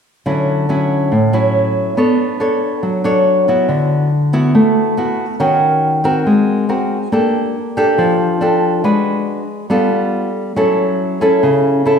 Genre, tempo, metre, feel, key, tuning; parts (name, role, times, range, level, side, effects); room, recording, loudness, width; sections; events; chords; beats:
bossa nova; 140 BPM; 4/4; straight; D major; A4 = 440 Hz
nylon-string guitar; solo; 0.3-12.0 s; A2 to C#5; -12 LUFS; equal
wet recital hall reverb, RT60 1.5 s; recorded in a church or concert hall; -13 LUFS; side -6 dB against mid
0.3-3.7 A section; 3.7-12.0 B section
0.3 Dmaj9; 2.0 Bm9; 3.7 D69; 5.4 Ebm7; 6.3 G#9; 7.1 Bb6; 8.8 G#m7b5; 9.7 G9; 10.6 F#m7
| 0.26 0.69 1.11 1.54 | 1.97 2.40 2.83 3.26 | 3.69 4.12 4.55 4.98 | 5.41 5.83 6.26 6.69 | 7.12 7.55 7.98 8.41 | 8.84 9.27 9.70 10.13 | 10.56 10.99 11.42 11.85